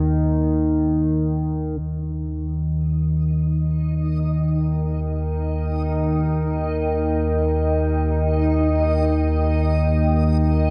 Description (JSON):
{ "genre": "dark ambient drone", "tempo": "free time", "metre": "none", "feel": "none", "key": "Eb major", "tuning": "A4 = 440 Hz", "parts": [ { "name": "analog drone", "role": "drone", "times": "0.0-10.7 s", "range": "Eb2 to Eb3", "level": "-22 LUFS", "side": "equal", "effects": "chorus" }, { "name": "deep dark ambient pad", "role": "sustained chords", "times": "3.5-10.7 s", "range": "Eb4 to G5", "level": "-27 LUFS", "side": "equal", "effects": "chorus, built-in reverb" }, { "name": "backwards swelling texture", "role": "texture", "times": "3.3-10.7 s", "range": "Eb4 to Eb5", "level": "-31 LUFS", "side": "equal", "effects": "built-in reverb" } ], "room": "wet cathedral reverb, RT60 6.0 s", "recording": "none", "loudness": "-21 LUFS", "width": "mono", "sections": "0.0-1.8 A section; 1.8-10.7 B section", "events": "filter sweep on synth drone 1.8-10.7", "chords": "0.0 N.C.; 1.8 Eb", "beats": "free time" }